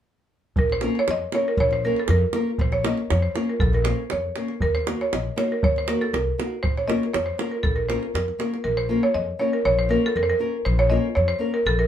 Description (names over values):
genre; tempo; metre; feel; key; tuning
balkan folk, Balkan wedding band; 119 BPM; 2/4; straight; Bb harmonic minor; A4 = 441 Hz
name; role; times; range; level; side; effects
buzzing marimba with hard mallets; melody; 0.6-11.9 s; A4 to Eb5; -24 LUFS; right 1 dB; none
upright bass; bass; 0.6-11.9 s; Bb1 to F2; -25 LUFS; left 1 dB; none
davul; percussion; 0.6-8.6 s; none; -26 LUFS; right 1 dB; none
nylon-string guitar; accompaniment; 0.8-11.6 s; Bb3 to Bb4; -26 LUFS; left 3 dB; none
room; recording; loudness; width
moderate studio ambience, RT60 0.5 s; band playing live in one room; -20 LUFS; side -10 dB against mid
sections
0.6-8.6 A section; 8.6-11.9 A section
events
none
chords
0.6 Bbm; 4.6 Ebm; 6.6 Bbm